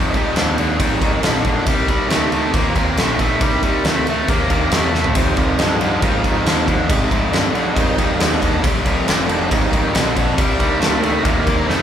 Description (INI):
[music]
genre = blues rock power trio and southern rock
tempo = 138 BPM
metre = 4/4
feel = straight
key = unclear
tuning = A4 = 440 Hz
[part]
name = bright tonewheel organ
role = sustained chords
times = 0.0-11.8 s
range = Eb3 to C5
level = -24 LUFS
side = right 2 dB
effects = overdrive, chorus vibrato, slow rotary speaker
[part]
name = distorted electric guitar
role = riff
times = 0.0-11.8 s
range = F2 to Bb3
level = -18 LUFS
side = left 1 dB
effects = overdrive
[part]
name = fuzz fingered electric bass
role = bass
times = 0.0-11.8 s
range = F1 to Ab2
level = -24 LUFS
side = equal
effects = overdrive
[part]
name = huge arena drum kit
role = drums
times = 0.1-11.8 s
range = kick drum, ride cymbal, snare drum, toms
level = -19 LUFS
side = equal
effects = none
[sound]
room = moderate large studio reverb, RT60 1.4 s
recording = band playing live in one room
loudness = -14 LUFS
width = side -9 dB against mid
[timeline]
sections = 0.0-11.8 A section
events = drum fill 4.9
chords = 0.0 Fm7; 1.7 Cm7; 5.2 Fm7; 10.4 Cm7